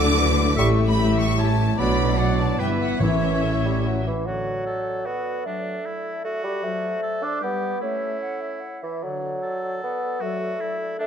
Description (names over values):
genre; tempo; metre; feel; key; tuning
classical, dramatic, fast romantic movement for symphony orchestra; 150 BPM; 3/4; straight; D major; A4 = 439 Hz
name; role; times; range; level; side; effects
warm chamber violin section; melody; 0.0-4.1 s; D5 to E5; -32 LUFS; left 5 dB; none
mellow clarinet; second line; 0.0-11.1 s; A4 to D5; -35 LUFS; left 3 dB; none
silver concert flute; second line; 0.0-11.1 s; D5 to D6; -35 LUFS; left 4 dB; none
warm symphonic violin section; second line; 0.0-3.9 s; E5 to D6; -28 LUFS; left 2 dB; none
warm symphonic viola section; accompaniment; 0.0-4.1 s; A3 to G4; -32 LUFS; right 1 dB; none
dark trombone section; sustained chords; 0.0-4.1 s; G2 to G3; -32 LUFS; right 3 dB; none
mellow French horn section; sustained chords; 0.0-10.5 s; D3 to E4; -29 LUFS; left 7 dB; none
rich symphonic cello section; bass; 0.0-4.0 s; G2 to D3; -26 LUFS; right 2 dB; none
rich symphonic double bass section; bass; 0.0-4.0 s; G1 to D2; -24 LUFS; right 2 dB; none
clear oboe; second line; 0.6-11.1 s; D4 to E5; -33 LUFS; right 1 dB; none
mellow bassoon; accompaniment; 0.6-11.1 s; E3 to D4; -27 LUFS; right 1 dB; none
timpani; percussion; 3.0-3.6 s; A2; -26 LUFS; right 1 dB; none
room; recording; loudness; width
moderate scoring stage reverb, RT60 1.6 s; none; -21 LUFS; side -8 dB against mid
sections
0.0-4.3 A section; 4.3-11.1 B section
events
none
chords
0.0 D; 0.6 A7; 1.8 Bm7; 2.6 Em/G; 3.0 A; 4.3 D; 5.5 D/F#; 6.6 D7/F#; 7.4 G; 7.8 A; 9.0 D; 10.2 D/F#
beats
0.17 | 0.58 0.98 1.38 | 1.78 2.19 2.60 | 3.01 3.43 3.85 | 4.27 4.67 5.06 | 5.46 5.85 6.24 | 6.63 7.02 7.42 | 7.81 8.22 8.62 | 9.03 9.43 9.82 | 10.22 10.61 10.99